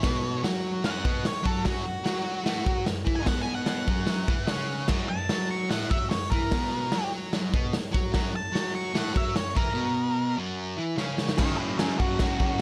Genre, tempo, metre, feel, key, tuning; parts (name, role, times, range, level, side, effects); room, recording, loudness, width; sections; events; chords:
garage rock duo or trio; 148 BPM; 4/4; straight; A4 = 440 Hz
octave-fuzz lead guitar; melody; 0.0-12.6 s; F#4 to C#6; -34 LUFS; equal; distortion
fuzz guitar; riff; 0.0-12.6 s; F#2 to F#4; -32 LUFS; equal; distortion
raw garage drum kit; drums; 0.0-12.5 s; crash cymbal, hi-hat, kick drum, snare drum; -30 LUFS; equal
small room ambience; faint mains hum; -27 LUFS; mono
0.0-11.4 A section; 11.4-12.6 B section
lead electric guitar solo 0.0-11.4; drum fill 11.0-11.4
0.0 F#5; 11.4 F#